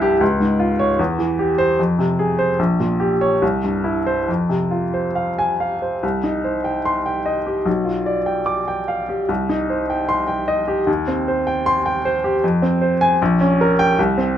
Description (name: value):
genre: classical, romantic character piece for solo piano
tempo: 68-79 BPM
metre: 2/4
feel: rubato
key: F minor, C minor from 6.0 s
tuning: A4 = 440 Hz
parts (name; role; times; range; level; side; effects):
- clear baby grand piano; solo; 0.0-14.4 s; Bb1 to D6; -16 LUFS; equal; none
room: light reverb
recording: none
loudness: -17 LUFS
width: side -10 dB against mid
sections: 0.0-6.0 A section; 6.0-14.4 B section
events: none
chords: 0.2 Db; 1.0 C/E; 1.8 Fm; 2.6 Gdim/Bb; 3.4 C; 4.3 Fm; 6.0 Cm; 7.7 G7/B; 9.3 Cm; 10.9 Cm/Eb; 12.4 Fm; 13.2 Gdim/Bb